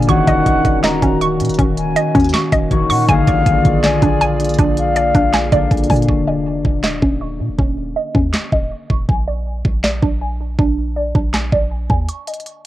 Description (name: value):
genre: hip hop, trap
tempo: 160 BPM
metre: 4/4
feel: half-time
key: Eb minor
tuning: A4 = 442 Hz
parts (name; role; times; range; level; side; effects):
- concert harp; accompaniment; 0.0-8.7 s; D3 to Ab4; -19 LUFS; left 4 dB; cassette tape
- dark analog pad; sustained chords; 0.0-6.1 s; Eb3 to D5; -23 LUFS; right 2 dB; chorus, cassette tape
- hollow square pluck; arpeggios; 0.0-12.7 s; Db4 to Db6; -20 LUFS; right 1 dB; chorus, low-pass filter, cassette tape, tape echo
- clean 808-style bass; bass; 0.0-12.1 s; Eb1 to Bb2; -21 LUFS; equal; none
- trap drum kit; drums; 0.0-12.5 s; handclaps, hi-hat, kick drum, snare drum; -18 LUFS; equal; overdrive, cassette tape
- mellow concert flute; second line; 0.1-5.7 s; F5 to Bb5; -21 LUFS; left 2 dB; cassette tape, tape echo
room: little or no reverb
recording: home recording on cassette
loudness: -13 LUFS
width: side -14 dB against mid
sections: 0.0-6.1 A section; 6.1-12.7 B section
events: break 6.1-12.1, 12.1-12.7; filter sweep on synth pluck 6.1-12.7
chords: 0.1 Ebm7; 3.1 Bb7; 6.1 Eb5; 9.1 Bb7; 12.1 Eb5